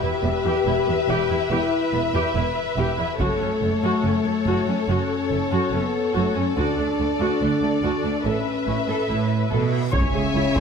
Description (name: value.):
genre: cinematic, epic orchestral film score.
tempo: 71 BPM.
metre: 4/4.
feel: straight.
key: unclear.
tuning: A4 = 438 Hz.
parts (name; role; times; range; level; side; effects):
warm symphonic violin section; melody; 0.0-10.6 s; C#5 to E5; -29 LUFS; left 5 dB; none.
warm symphonic violin section; second line; 0.0-10.6 s; A4 to G#5; -28 LUFS; left 2 dB; none.
warm symphonic viola section; accompaniment; 0.0-10.6 s; A3 to C#5; -28 LUFS; right 1 dB; none.
mellow French horn section; sustained chords; 0.0-10.6 s; A3 to G4; -25 LUFS; left 4 dB; none.
rich symphonic cello section; bass; 0.0-10.6 s; C#2 to B2; -27 LUFS; right 4 dB; none.
rich studio double bass section; bass; 0.2-10.4 s; E1 to D2; -30 LUFS; right 4 dB; none.
solo taiko drums; drums; 3.2-4.8, 9.9-10.6 s; none; -25 LUFS; equal; none.
reverse cymbal and impact; sound effects; 9.5-10.6 s; none; -36 LUFS; equal; none.
bright trombone section; sustained chords; 9.9-10.6 s; C#3; -27 LUFS; right 6 dB; none.
mellow tuba; bass; 9.9-10.4 s; C#2; -30 LUFS; right 2 dB; none.
room: moderate scoring stage reverb, RT60 2.0 s.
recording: none.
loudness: -20 LUFS.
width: side -6 dB against mid.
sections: 0.0-9.9 A section.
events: reverse cymbal 9.5-9.9; impact 9.9-10.6.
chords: 0.0 Em; 3.2 F#m; 6.6 D; 8.2 Aadd9; 9.9 C#m.